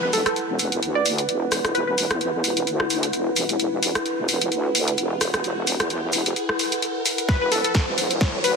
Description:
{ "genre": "bass house", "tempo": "130 BPM", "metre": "4/4", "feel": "swing 55% on 16ths", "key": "unclear", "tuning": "A4 = 440 Hz", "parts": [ { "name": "glassy wavetable pluck", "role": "melody", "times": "0.0-1.9, 7.3-8.5 s", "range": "A4 to D5", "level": "-25 LUFS", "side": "left 1 dB", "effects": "chorus, vintage 12-bit sampler grit, tape echo" }, { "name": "wobble bass", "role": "bass", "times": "0.0-8.6 s", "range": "E1 to E2", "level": "-27 LUFS", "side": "equal", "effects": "chorus, sidechain pumping, high-pass filter" }, { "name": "riser", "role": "sound effects", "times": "0.0-8.6 s", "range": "none", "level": "-33 LUFS", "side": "right 1 dB", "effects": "none" }, { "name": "warbly tape-like pad", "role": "texture", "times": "0.0-8.6 s", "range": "E4 to F#5", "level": "-27 LUFS", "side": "right 1 dB", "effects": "chorus, built-in reverb, sidechain pumping" }, { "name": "house drum kit", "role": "drums", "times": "0.1-8.5 s", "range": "hi-hat, rim click, snare drum", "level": "-24 LUFS", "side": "left 1 dB", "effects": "small room ambience" }, { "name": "maracas", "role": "percussion", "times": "0.1-8.5 s", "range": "none", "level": "-32 LUFS", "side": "right 3 dB", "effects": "none" }, { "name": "electronic kick drum", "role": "drums", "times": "7.3-8.3 s", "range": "none", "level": "-21 LUFS", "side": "equal", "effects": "small room ambience" } ], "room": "moderate lush hall reverb, RT60 2.0 s, small room reverb", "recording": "dense, heavily limited modern master, high-pass filter", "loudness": "-20 LUFS", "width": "side -5 dB against mid", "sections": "0.0-8.6 A section", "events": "build-up 0.0-8.6; riser 0.0-8.6; drum fill 7.3-8.6", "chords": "0.0 E5" }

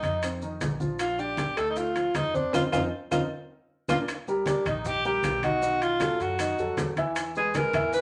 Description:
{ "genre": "Afro-Cuban jazz", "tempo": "156 BPM", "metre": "4/4", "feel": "straight", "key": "Bb major", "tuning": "A4 = 441 Hz", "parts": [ { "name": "clear tenor saxophone", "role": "melody", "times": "0.0-8.0 s", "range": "D4 to B4", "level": "-30 LUFS", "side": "equal", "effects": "none" }, { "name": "warm upright piano", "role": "accompaniment", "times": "0.0-8.0 s", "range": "Eb3 to Fb5", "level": "-32 LUFS", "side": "equal", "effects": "none" }, { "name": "upright bass", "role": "bass", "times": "0.0-8.0 s", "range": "Bb1 to F#2", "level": "-41 LUFS", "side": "equal", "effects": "none" }, { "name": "bongos", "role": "percussion", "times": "0.0-8.0 s", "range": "none", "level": "-43 LUFS", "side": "equal", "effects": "none" }, { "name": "congas", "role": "percussion", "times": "0.0-8.0 s", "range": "none", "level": "-36 LUFS", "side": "equal", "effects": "none" }, { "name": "maracas", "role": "percussion", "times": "0.0-8.0 s", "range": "none", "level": "-48 LUFS", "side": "equal", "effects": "none" }, { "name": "timbales", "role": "percussion", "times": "0.0-7.9 s", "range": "none", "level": "-37 LUFS", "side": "equal", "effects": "none" }, { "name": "claves", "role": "percussion", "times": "0.2-7.9 s", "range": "none", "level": "-45 LUFS", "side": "equal", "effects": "none" } ], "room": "wet studio reverb, RT60 0.8 s", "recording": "none", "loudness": "-27 LUFS", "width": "mono", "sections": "0.0-4.1 A section; 4.1-8.0 B section", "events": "band accent 2.5-4.1; drum fill 3.3-4.1", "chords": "0.2 F5; 1.0 Bbmaj9; 2.5 F5; 3.3 Bb; 4.1 Eb; 5.6 B7; 7.2 E" }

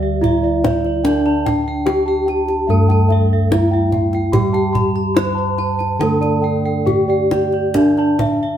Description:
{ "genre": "Javanese gamelan", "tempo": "66-73 BPM", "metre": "4/4", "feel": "straight", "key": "D slendro", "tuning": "A4 = 439 Hz", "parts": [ { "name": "gamelan-type bronze metallophone", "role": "melody", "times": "0.0-8.6 s", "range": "D4 to C5-40c", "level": "-19 LUFS", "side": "left 1 dB", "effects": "none" }, { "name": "gamelan-type bronze metallophone", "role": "accompaniment", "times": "0.0-8.6 s", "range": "D3 to A3+20c", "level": "-25 LUFS", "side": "right 4 dB", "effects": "none" }, { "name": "gamelan-type bossed gongs", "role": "arpeggios", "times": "0.0-8.4 s", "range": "D5 to C6-40c", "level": "-24 LUFS", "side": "right 1 dB", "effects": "none" }, { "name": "gamelan-type bronze metallophone", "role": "arpeggios", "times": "0.0-8.6 s", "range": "D5 to C6-40c", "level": "-25 LUFS", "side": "right 4 dB", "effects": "none" }, { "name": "gamelan-type bossed gongs", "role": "bass", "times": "0.0-8.6 s", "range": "D2 to G4-20c", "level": "-18 LUFS", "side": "equal", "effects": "none" }, { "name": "kendang", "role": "percussion", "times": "0.2-8.4 s", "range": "none", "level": "-21 LUFS", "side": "equal", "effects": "none" } ], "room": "wet stone room reverb, RT60 1.0 s", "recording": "band playing live in one room", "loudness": "-14 LUFS", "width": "side -10 dB against mid", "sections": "0.0-8.6 A section", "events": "none", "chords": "none" }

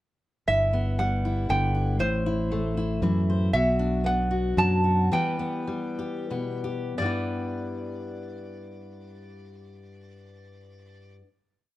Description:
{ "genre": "acoustic folk duo or small band", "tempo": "85-118 BPM", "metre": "3/4", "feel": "straight", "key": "G major", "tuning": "A4 = 440 Hz", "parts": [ { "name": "metal-body resonator slide guitar", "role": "melody", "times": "0.5-11.2 s", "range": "C5 to A5", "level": "-27 LUFS", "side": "right 2 dB", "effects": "none" }, { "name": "fingerpicked steel-string acoustic guitar", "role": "accompaniment", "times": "0.5-11.3 s", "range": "G2 to C5", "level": "-30 LUFS", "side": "left 2 dB", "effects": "none" }, { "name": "fingered electric bass", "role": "bass", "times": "0.5-5.1 s", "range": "G1 to F#2", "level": "-25 LUFS", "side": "equal", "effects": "none" } ], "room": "light reverb", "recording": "dark, warm production", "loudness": "-23 LUFS", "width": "side -16 dB against mid", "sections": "0.5-7.0 verse; 7.0-11.2 final chord", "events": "slowing down 3.5-7.0", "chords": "0.5 G6; 2.0 Am; 3.5 Bm; 5.1 Em; 7.0 G6" }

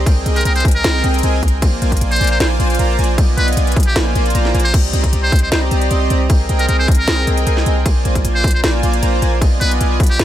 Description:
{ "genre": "future bass", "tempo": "154 BPM", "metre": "4/4", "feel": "half-time", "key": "C minor", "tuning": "A4 = 440 Hz", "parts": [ { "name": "warm 808-style bass", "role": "bass", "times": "0.0-10.2 s", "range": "Bb1 to C2", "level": "-16 LUFS", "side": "equal", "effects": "sidechain pumping" }, { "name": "soft supersaw", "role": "riff", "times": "0.1-10.2 s", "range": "Bb3 to C6", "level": "-20 LUFS", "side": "right 1 dB", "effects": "cassette tape, sidechain pumping, tape echo" }, { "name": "electronic kick drum", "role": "drums", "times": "0.1-10.1 s", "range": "none", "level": "-14 LUFS", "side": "equal", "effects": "none" }, { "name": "trap drum kit", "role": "drums", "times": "0.1-10.2 s", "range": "crash cymbal, hi-hat, snare drum", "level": "-23 LUFS", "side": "equal", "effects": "none" }, { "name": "trumpet with metal mute", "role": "melody", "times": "0.4-10.2 s", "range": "G4 to C5", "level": "-22 LUFS", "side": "equal", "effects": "sidechain pumping, ping-pong delay" } ], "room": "little or no reverb", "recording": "none", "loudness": "-12 LUFS", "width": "side -12 dB against mid", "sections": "0.0-4.7 A section; 4.7-10.2 A section", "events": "drop 0.0-4.7, 4.7-10.2; kick drops out 4.0-4.7", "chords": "0.1 Abmaj9/C; 1.6 Bb7; 3.2 G7b9b13/B (rootless); 4.0 Bb9; 4.7 Cm9; 6.3 Abmaj9/C; 7.9 Bb7; 9.4 G7b9b13/B (rootless)" }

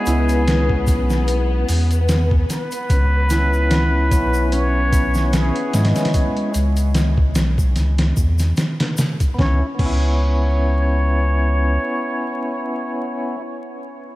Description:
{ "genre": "trip hop", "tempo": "74 BPM", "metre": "4/4", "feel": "swing 55% on 16ths", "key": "C# minor", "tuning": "A4 = 440 Hz", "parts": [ { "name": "trumpet with plunger mute", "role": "melody", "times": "0.0-13.4 s", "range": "G#4 to C#5", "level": "-26 LUFS", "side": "equal", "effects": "dub echo" }, { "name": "percussive tonewheel organ", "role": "accompaniment", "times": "0.0-13.4 s", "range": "B3 to E4", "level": "-26 LUFS", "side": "equal", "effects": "overdrive, tremolo, tape echo" }, { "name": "dark studio string section", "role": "sustained chords", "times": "0.0-6.2 s", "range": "B3", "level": "-26 LUFS", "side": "left 3 dB", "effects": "vintage 12-bit sampler grit" }, { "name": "Celtic harp", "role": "arpeggios", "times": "0.0-12.7 s", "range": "G#3 to F#4", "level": "-27 LUFS", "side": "equal", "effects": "dub echo" }, { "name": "soft dub sub bass", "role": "bass", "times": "0.1-11.8 s", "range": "B1 to G#2", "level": "-18 LUFS", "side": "equal", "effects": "none" }, { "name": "trip hop sampler-style drum kit", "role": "drums", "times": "0.1-10.1 s", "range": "crash cymbal, hi-hat, kick drum, snare drum", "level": "-20 LUFS", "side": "equal", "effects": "studio reverb" }, { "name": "tube shaker", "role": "percussion", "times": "0.1-9.3 s", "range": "none", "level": "-37 LUFS", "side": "left 4 dB", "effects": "none" } ], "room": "light reverb, small room reverb", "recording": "vinyl crackle", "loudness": "-16 LUFS", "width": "side -17 dB against mid", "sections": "0.0-9.4 A section; 9.4-12.6 B section", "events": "none", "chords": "0.0 C#m7" }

